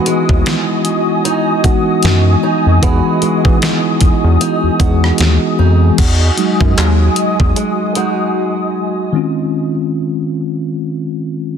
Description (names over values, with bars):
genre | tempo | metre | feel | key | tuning
contemporary R&B | 76 BPM | 4/4 | swing 58% on 16ths | unclear | A4 = 443 Hz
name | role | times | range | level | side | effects
mellow tine electric piano | accompaniment | 0.0-11.6 s | Eb3 to G#4 | -16 LUFS | left 1 dB | medium stereo tremolo
hollow soft pad | sustained chords | 0.0-9.1 s | F#4 to D#6 | -20 LUFS | equal | ensemble chorus
fingerpicked old ladder-braced acoustic guitar | arpeggios | 0.0-9.7 s | E3 to F#4 | -20 LUFS | right 2 dB | tape echo
detuned 8-bit digital drum machine | drums | 0.1-8.2 s | crash cymbal, handclaps, hi-hat, kick drum, rim click, snare drum | -16 LUFS | equal | none
round analog bass | bass | 0.3-7.5 s | D#2 to E3 | -12 LUFS | equal | none
room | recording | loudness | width
light reverb | dense, heavily limited modern master | -11 LUFS | side -8 dB against mid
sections
0.0-6.0 A section; 6.0-9.1 B section; 9.1-11.6 C section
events
tine electric piano solo 6.0-9.1; silent gap 8.4-9.1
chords
0.0 Emaj9; 9.1 Dbmaj9